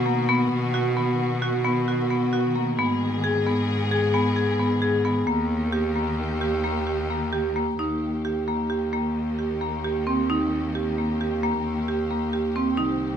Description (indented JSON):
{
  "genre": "contemporary instrumental, chamber music in an uneven meter",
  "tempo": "265 BPM (eighths)",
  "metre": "11/8",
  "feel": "straight",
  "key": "unclear",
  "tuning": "A4 = 439 Hz",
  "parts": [
    { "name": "dark studio string section", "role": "sustained chords", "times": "0.0-13.2 s", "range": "D#3 to Ab4", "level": "-32 LUFS", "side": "left 3 dB", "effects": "none" },
    { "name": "marimba with medium hard mallets", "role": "arpeggios", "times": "0.0-13.2 s", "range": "Bb3 to Ab4", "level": "-24 LUFS", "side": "right 1 dB", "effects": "none" },
    { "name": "clear cello", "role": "bass", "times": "0.0-13.2 s", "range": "C2 to B2", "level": "-28 LUFS", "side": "equal", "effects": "none" }
  ],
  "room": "light reverb",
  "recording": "close, detailed microphones",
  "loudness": "-22 LUFS",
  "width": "side -8 dB against mid",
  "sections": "0.0-7.8 A section; 7.8-13.2 B section",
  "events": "none",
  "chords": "0.0 B; 2.8 Abm; 5.3 Eb"
}